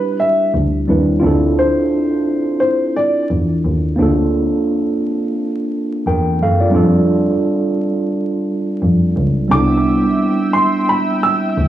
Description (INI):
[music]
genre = hip hop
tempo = 87 BPM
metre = 4/4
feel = swing 55% on 16ths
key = C major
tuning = A4 = 438 Hz
[part]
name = dark upright piano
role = melody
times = 0.0-3.3, 9.5-11.5 s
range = B4 to E6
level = -17 LUFS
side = equal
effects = high-pass filter, low-pass filter, cassette tape, tape echo
[part]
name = mellow tine electric piano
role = accompaniment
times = 0.0-11.7 s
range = G3 to G5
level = -16 LUFS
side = right 1 dB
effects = medium stereo tremolo, cassette tape, high-pass filter, low-pass filter
[part]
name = dark double bass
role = bass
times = 0.5-11.7 s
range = C2 to F#2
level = -17 LUFS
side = equal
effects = none
[part]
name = warm analog pad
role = sustained chords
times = 9.5-11.7 s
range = E5 to E6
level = -25 LUFS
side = right 1 dB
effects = chorus, high-pass filter, low-pass filter, cassette tape
[sound]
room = light reverb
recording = home recording on cassette, vinyl crackle, studio reverb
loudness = -14 LUFS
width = side -12 dB against mid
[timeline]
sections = 0.0-9.5 A section; 9.5-11.7 B section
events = none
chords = 0.0 Cmaj7; 1.2 Dm7; 4.0 Bbmaj7/D; 6.7 F6; 9.5 Cmaj7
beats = 0.54 | 1.23 1.92 2.61 3.30 | 3.99 4.68 5.37 6.06 | 6.75 7.44 8.13 8.82 | 9.51 10.20 10.89 11.58